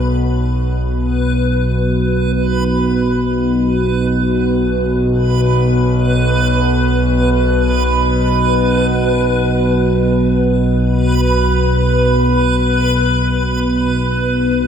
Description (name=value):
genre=dark ambient drone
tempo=free time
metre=none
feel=none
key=unclear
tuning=A4 = 442 Hz
part: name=analog drone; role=drone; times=0.0-14.7 s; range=B1 to B2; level=-14 LUFS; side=equal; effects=chorus
part: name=backwards swelling texture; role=texture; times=0.0-14.7 s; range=B4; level=-19 LUFS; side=right 1 dB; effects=built-in reverb
room=wet huge ambient reverb, RT60 7.2 s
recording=none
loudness=-12 LUFS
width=side -8 dB against mid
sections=0.0-14.7 A section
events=none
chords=none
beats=free time